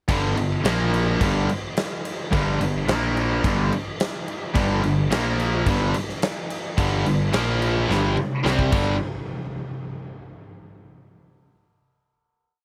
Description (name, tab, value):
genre	hard rock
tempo	108 BPM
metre	4/4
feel	straight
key	G minor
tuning	A4 = 440 Hz
part	cranked stack guitar	riff	0.1-9.0 s	G2 to C4	-27 LUFS	equal	overdrive, phaser
part	tight distorted guitar	riff	0.1-8.9 s	G2 to C4	-28 LUFS	equal	distortion
part	fuzz picked electric bass	bass	0.1-9.0 s	G1 to C2	-27 LUFS	equal	overdrive
part	huge arena drum kit	drums	0.1-8.9 s	crash cymbal, kick drum, snare drum, toms	-28 LUFS	equal	none
room	little or no reverb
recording	none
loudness	-23 LUFS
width	mono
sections	0.1-9.0 riff; 9.0-11.2 final hit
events	drum fill 7.9-9.0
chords	0.1 G5; 0.6 Bb5; 1.2 G5; 2.9 Bb5; 3.4 G5; 5.1 Bb5; 5.7 G5; 7.3 Bb5; 7.9 G5; 8.4 C5; 8.7 G5; 9.0 N.C.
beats	| 0.09 0.64 1.20 1.76 | 2.32 2.88 3.44 3.99 | 4.55 5.11 5.66 6.22 | 6.78 7.33 7.89 8.45